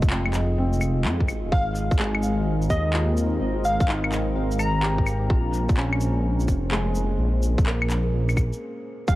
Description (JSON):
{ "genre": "future garage", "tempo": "127 BPM", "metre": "4/4", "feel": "swing 66% on 16ths", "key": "unclear", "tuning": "A4 = 442 Hz", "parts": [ { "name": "felt-muted upright piano", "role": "accompaniment", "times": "0.0-9.2 s", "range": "G3 to G4", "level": "-31 LUFS", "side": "right 1 dB", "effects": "sidechain pumping, tape echo" }, { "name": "deep dark ambient pad", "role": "sustained chords", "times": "0.0-9.2 s", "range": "Ab3 to Eb5", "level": "-31 LUFS", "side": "left 1 dB", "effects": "chorus, built-in reverb, vintage 12-bit sampler grit, sidechain pumping" }, { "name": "dark detuned saw bass", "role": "bass", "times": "0.0-9.2 s", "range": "Eb1 to F2", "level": "-24 LUFS", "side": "equal", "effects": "sidechain pumping" }, { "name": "electronic kick drum", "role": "drums", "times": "0.0-9.2 s", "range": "none", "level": "-21 LUFS", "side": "equal", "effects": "none" }, { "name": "electronic shaker, handclaps and claves", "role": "drums", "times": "0.0-9.2 s", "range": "none", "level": "-30 LUFS", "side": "left 1 dB", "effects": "none" }, { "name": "glassy wavetable pluck", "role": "melody", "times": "1.5-5.3, 9.1-9.2 s", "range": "Eb5 to Bb5", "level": "-29 LUFS", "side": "left 1 dB", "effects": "chorus, cassette tape, tape echo" } ], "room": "light reverb, digital ambience", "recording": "cassette tape", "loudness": "-21 LUFS", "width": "side -17 dB against mid", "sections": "0.0-9.1 A section", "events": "break 8.6-9.1", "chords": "0.0 Fm7; 1.5 Abadd9; 5.3 Bbmadd9" }